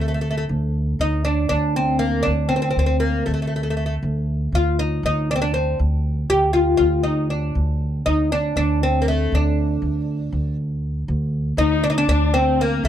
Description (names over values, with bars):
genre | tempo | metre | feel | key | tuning
Turkish makam ensemble | 238 BPM (eighths) | 7/8 | straight | D makam kurdi | A4 = 440 Hz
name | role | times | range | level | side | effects
oud | melody | 0.0-12.9 s | A3 to G4 | -21 LUFS | equal | none
upright bass | bass | 0.0-12.9 s | D2 | -21 LUFS | equal | none
rich kamancheh | second line | 11.6-12.9 s | Bb3 to Eb4 | -23 LUFS | left 8 dB | none
room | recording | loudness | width
little or no reverb | dark, warm production | -18 LUFS | side -10 dB against mid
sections
0.0-11.1 A section; 11.1-12.9 A section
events
none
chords
none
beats
0.00 0.25 | 0.50 0.76 1.01 1.26 1.51 1.76 2.02 | 2.27 2.52 2.77 3.03 3.28 3.53 3.78 | 4.03 4.29 4.54 4.79 5.04 5.29 5.55 | 5.80 6.05 6.30 6.55 6.81 7.06 7.31 | 7.56 7.81 8.07 8.32 8.57 8.82 9.07 | 9.33 9.58 9.83 10.08 10.33 10.59 10.84 | 11.09 11.34 11.59 11.85 12.10 12.35 12.60 | 12.85